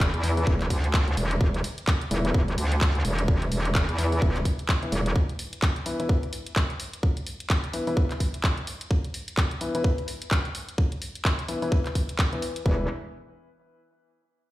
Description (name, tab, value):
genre	bass house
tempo	128 BPM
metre	4/4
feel	swing 59% on 16ths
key	unclear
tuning	A4 = 440 Hz
part	metallic wobble bass	bass	0.0-5.1, 12.7-12.9 s	E1 to E2	-25 LUFS	equal	chorus, tube saturation, sidechain pumping
part	electronic kick drum	drums	0.0-12.8 s	none	-23 LUFS	equal	studio reverb
part	garage drum kit	drums	0.0-12.6 s	handclaps, hi-hat	-31 LUFS	equal	studio reverb
part	dark grand piano	stabs	0.2-12.8 s	E3 to B4	-32 LUFS	left 2 dB	sidechain pumping, low-pass filter, tape echo
room	light reverb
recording	played on a big sound system in a bare room, large studio reverb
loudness	-23 LUFS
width	side -16 dB against mid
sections	0.0-12.7 A section; 12.7-14.5 B section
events	none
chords	0.0 E5